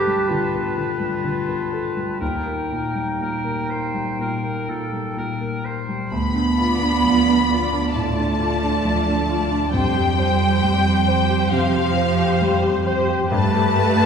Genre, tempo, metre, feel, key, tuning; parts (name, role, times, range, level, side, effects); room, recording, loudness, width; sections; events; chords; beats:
cinematic, emotional film score for orchestra; 60-68 BPM; 4/4; rubato; D dorian; A4 = 439 Hz
bright concert flute; second line; 0.0-5.8 s; G5 to A5; -32 LUFS; left 3 dB
clear clarinet; second line; 0.0-5.6 s; Eb4 to G4; -26 LUFS; left 1 dB
clear oboe; second line; 0.0-6.1 s; A4 to C5; -30 LUFS; right 1 dB
clear concert grand piano; accompaniment; 0.0-14.1 s; D2 to C5; -23 LUFS; left 1 dB
warm symphonic violin section; melody; 6.1-14.1 s; F5 to B5; -26 LUFS; left 4 dB
warm symphonic violin section; second line; 6.1-14.1 s; F5 to B5; -25 LUFS; left 2 dB
warm studio double bass section; bass; 6.1-14.1 s; D2 to G2; -25 LUFS; right 2 dB
warm symphonic cello section; bass; 6.1-14.1 s; F3 to B3; -22 LUFS; right 5 dB
warm symphonic viola section; accompaniment; 6.6-14.1 s; F4 to D5; -25 LUFS; equal
wet concert hall reverb, RT60 2.1 s; heard from further back in the room; -18 LUFS; side -6 dB against mid
0.0-6.1 A section; 6.1-14.1 A section
0.0 Gadd9; 2.2 Eb; 6.1 Dm; 9.7 Fsus2; 13.3 Gadd9
0.30 1.23 | 2.21 3.20 4.19 5.17 | 6.12 7.04 7.95 8.85 | 9.74 10.63 11.52 12.42 | 13.32